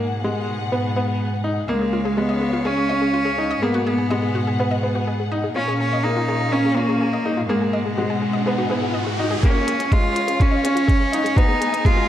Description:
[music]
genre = piano and strings electronica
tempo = 124 BPM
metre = 4/4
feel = straight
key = G# dorian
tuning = A4 = 440 Hz
[part]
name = warm studio string section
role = sustained chords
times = 0.0-12.1 s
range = B2 to G#5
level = -29 LUFS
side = left 2 dB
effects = none
[part]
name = bright upright piano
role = riff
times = 0.0-12.1 s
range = G#3 to D#4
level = -24 LUFS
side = equal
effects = digital delay
[part]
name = warm chamber cello section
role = bass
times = 0.0-12.1 s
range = C#2 to A#2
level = -27 LUFS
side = equal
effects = sidechain pumping, high-pass filter
[part]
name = bright cello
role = melody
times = 1.7-12.1 s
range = G#3 to E#4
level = -22 LUFS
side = equal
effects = none
[part]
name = analog pluck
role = arpeggios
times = 1.7-12.0 s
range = E#4 to D#5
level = -29 LUFS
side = left 3 dB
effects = chorus, sidechain pumping, digital delay
[part]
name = riser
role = sound effects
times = 7.2-12.1 s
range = none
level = -31 LUFS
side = right 1 dB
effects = none
[part]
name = electronic hi-hat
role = drums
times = 9.4-12.0 s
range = none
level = -33 LUFS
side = left 1 dB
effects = low-pass filter on hats
[part]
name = electronic kick drum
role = drums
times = 9.4-11.9 s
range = none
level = -17 LUFS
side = equal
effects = none
[sound]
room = moderate lush hall reverb, RT60 1.6 s, small room reverb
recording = dark, warm production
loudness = -18 LUFS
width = side -11 dB against mid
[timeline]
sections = 0.0-9.4 A section; 9.4-12.1 B section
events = riser 7.2-9.4, 9.4-12.1; build-up 9.4-12.1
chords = 0.0 G#m7; 1.7 C#7; 3.6 G#m7; 5.6 A#m; 7.5 G#m7; 9.4 C#; 11.4 G#m

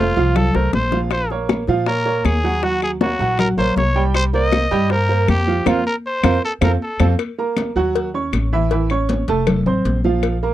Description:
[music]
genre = latin, salsa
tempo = 158 BPM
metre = 4/4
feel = straight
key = unclear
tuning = A4 = 440 Hz
[part]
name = growling trumpet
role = melody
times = 0.0-7.1 s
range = F4 to Eb5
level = -21 LUFS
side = left 1 dB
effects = none
[part]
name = clear baby grand piano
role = accompaniment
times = 0.0-10.5 s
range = E3 to Db6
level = -20 LUFS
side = right 5 dB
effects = none
[part]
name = upright bass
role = bass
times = 0.0-10.5 s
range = F1 to Bb2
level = -20 LUFS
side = left 1 dB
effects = none
[part]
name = bongos and cowbell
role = percussion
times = 0.2-10.4 s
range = none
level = -24 LUFS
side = left 10 dB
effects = none
[part]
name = congas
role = percussion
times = 0.2-10.5 s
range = none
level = -24 LUFS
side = left 2 dB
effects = none
[part]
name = claves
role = percussion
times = 0.4-10.4 s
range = none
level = -29 LUFS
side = left 10 dB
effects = none
[sound]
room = light reverb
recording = dry, close 1970s-style studio recording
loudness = -16 LUFS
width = side -13 dB against mid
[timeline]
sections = 0.0-7.2 A section; 7.2-10.5 B section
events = drum fill 0.5-1.1, 6.4-7.2; band accent 5.7-7.2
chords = 0.0 F; 1.1 Bbm; 2.6 Ebm7; 4.1 Cm7; 5.7 Fsus4; 6.4 F; 7.2 Ebm; 8.0 Ebm7; 8.7 A; 9.5 F

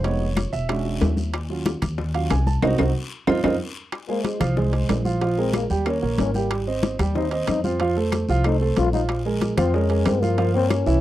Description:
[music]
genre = Afro-Cuban jazz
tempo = 186 BPM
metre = 4/4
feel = straight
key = F minor from 3.9 s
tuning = A4 = 440 Hz
[part]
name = warm grand piano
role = accompaniment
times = 0.0-11.0 s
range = E3 to A5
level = -24 LUFS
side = right 4 dB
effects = none
[part]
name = upright bass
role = bass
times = 0.0-11.0 s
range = E1 to G2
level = -24 LUFS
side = equal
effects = none
[part]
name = bongos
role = percussion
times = 0.0-11.0 s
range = none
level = -31 LUFS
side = left 7 dB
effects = none
[part]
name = congas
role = percussion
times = 0.0-11.0 s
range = none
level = -29 LUFS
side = left 2 dB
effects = none
[part]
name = guiro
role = percussion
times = 0.0-11.0 s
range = none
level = -41 LUFS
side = left 6 dB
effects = none
[part]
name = timbales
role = percussion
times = 0.0-10.9 s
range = none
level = -29 LUFS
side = right 6 dB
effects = none
[part]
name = claves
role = percussion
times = 0.4-10.9 s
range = none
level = -35 LUFS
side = left 8 dB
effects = none
[part]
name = growling trombone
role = second line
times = 4.1-11.0 s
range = Ab3 to F4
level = -25 LUFS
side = left 6 dB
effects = none
[sound]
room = light reverb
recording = dry, close 1970s-style studio recording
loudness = -20 LUFS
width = side -14 dB against mid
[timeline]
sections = 0.0-3.9 A section; 3.9-11.0 A section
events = grand piano solo 0.0-3.9; band accent 2.6-3.9; drum fill 3.1-3.9; trombone solo 3.9-11.0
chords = 0.0 Fm7b5; 0.7 E13; 1.3 Ebm7; 2.6 Cdim; 3.3 F5; 3.9 Fm; 5.2 Bb5; 5.9 Eb7; 6.5 Abmaj7; 7.8 F; 9.1 Bbm7; 10.4 Gm7b5

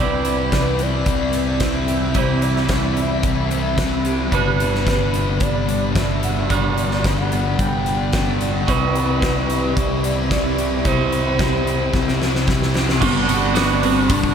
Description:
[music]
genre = rock, shoegaze and dream pop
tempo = 110 BPM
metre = 4/4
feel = straight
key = unclear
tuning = A4 = 440 Hz
[part]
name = warm velvety synth lead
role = melody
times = 0.0-14.3 s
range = B3 to G5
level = -26 LUFS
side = equal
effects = chorus, tape echo
[part]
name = icy glass pad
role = sustained chords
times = 0.0-13.0 s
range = C4 to B5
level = -28 LUFS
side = right 2 dB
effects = chorus, built-in reverb
[part]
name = picked twelve-string acoustic guitar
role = arpeggios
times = 0.0-14.3 s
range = E3 to G4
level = -30 LUFS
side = right 6 dB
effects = wide subtle chorus, tape echo
[part]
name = thick fuzz guitar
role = riff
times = 0.0-14.3 s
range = G2 to C4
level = -23 LUFS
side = left 6 dB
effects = distortion, lush chorus
[part]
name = twangy electric guitar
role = riff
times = 0.0-14.3 s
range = C3 to G4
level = -25 LUFS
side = right 8 dB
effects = reverse reverb
[part]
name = growling picked electric bass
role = bass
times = 0.0-14.3 s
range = G1 to C2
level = -23 LUFS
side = equal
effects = overdrive
[part]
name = huge arena drum kit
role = drums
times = 0.2-14.3 s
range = crash cymbal, hi-hat, kick drum, snare drum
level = -23 LUFS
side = equal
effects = none
[part]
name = tambourine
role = percussion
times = 13.3-14.2 s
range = none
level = -34 LUFS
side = left 14 dB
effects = none
[sound]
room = wet huge ambient reverb, RT60 7.2 s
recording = dreamy mix soaked in reverb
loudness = -16 LUFS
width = side -7 dB against mid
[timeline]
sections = 0.0-13.0 A section; 13.0-14.3 B section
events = drum fill 11.9-13.0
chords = 0.0 Cmaj7; 4.3 Gmaj7; 8.7 Cmaj7; 13.0 Gmaj7

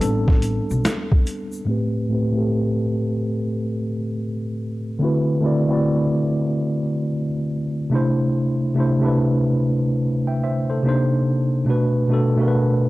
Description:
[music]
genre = lo-fi hip hop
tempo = 72 BPM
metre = 4/4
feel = swing 64% on 16ths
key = A dorian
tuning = A4 = 441 Hz
[part]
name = tine electric piano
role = accompaniment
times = 0.0-12.9 s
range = A2 to G5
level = -19 LUFS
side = equal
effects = overdrive, fast stereo tremolo, low-pass filter
[part]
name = upright bass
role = bass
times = 0.0-0.8 s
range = A1 to B1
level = -23 LUFS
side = equal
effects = none
[part]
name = boom bap sampler-style drum kit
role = drums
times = 0.0-1.5 s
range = finger snaps, hi-hat, kick drum, snare drum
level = -17 LUFS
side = equal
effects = overdrive
[part]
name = tube shaker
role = percussion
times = 0.0-1.7 s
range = none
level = -43 LUFS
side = left 2 dB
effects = none
[sound]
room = light reverb, studio reverb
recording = dry, gritty hardware recording, transformer saturation, cassette tape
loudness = -18 LUFS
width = side -18 dB against mid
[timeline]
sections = 0.0-1.7 A section; 1.7-12.9 B section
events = tine electric piano solo 0.0-1.7; filter sweep on tine electric piano 1.7-12.9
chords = 0.0 Am11; 1.7 Am7; 5.0 D13; 7.9 C69; 10.8 Cm7; 11.7 Bm7

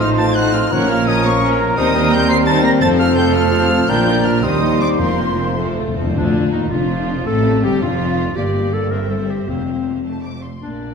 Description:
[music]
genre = classical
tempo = 103-116 BPM (dotted quarters)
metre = 6/8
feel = rubato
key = unclear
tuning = A4 = 440 Hz
[part]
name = warm symphonic violin section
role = melody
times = 0.0-10.6 s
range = D4 to C7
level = -25 LUFS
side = left 2 dB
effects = none
[part]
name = mellow hollow concert flute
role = second line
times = 0.0-6.0 s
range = A5 to C6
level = -25 LUFS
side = equal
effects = none
[part]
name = warm clarinet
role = second line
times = 0.0-10.9 s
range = C4 to Eb5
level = -24 LUFS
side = left 3 dB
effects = none
[part]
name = warm oboe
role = second line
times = 0.0-5.6 s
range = C5 to C6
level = -24 LUFS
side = right 1 dB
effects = none
[part]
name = warm symphonic violin section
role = second line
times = 0.0-10.9 s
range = D4 to Eb5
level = -28 LUFS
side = left 2 dB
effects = none
[part]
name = bright symphonic viola section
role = accompaniment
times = 0.0-10.9 s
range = D3 to F4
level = -25 LUFS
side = right 1 dB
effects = none
[part]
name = mellow bassoon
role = accompaniment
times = 0.0-6.0 s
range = F3 to Bb3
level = -24 LUFS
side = right 1 dB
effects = none
[part]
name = dark French horn section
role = sustained chords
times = 0.0-10.9 s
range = F3 to F4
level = -22 LUFS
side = left 6 dB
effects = none
[part]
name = dark trumpet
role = stabs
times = 0.0-6.0 s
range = A4 to C5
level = -24 LUFS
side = right 2 dB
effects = none
[part]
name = clear symphonic double bass section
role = bass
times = 0.0-10.9 s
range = F1 to Eb2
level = -22 LUFS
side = right 3 dB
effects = none
[part]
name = rich symphonic cello section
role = bass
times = 0.0-10.9 s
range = D2 to Bb2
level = -23 LUFS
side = right 4 dB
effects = none
[part]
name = timpani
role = percussion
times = 0.7-1.2, 3.9-6.7, 9.5-10.0 s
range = F2 to Bb2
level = -26 LUFS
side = left 2 dB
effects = none
[sound]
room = wet scoring stage reverb, RT60 1.6 s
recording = none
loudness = -14 LUFS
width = side -6 dB against mid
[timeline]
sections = 0.0-6.1 A section; 6.1-10.9 B section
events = timpani fill 5.6-6.1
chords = 0.0 F7/A; 0.7 Bbm; 1.8 Cm7/Eb; 2.8 F; 3.9 Bb; 4.4 Cm/Eb; 5.0 Fsus4; 5.6 F; 6.1 Dm; 7.3 F; 8.4 Gm7; 8.9 C/G; 9.5 Fsus4; 10.1 F

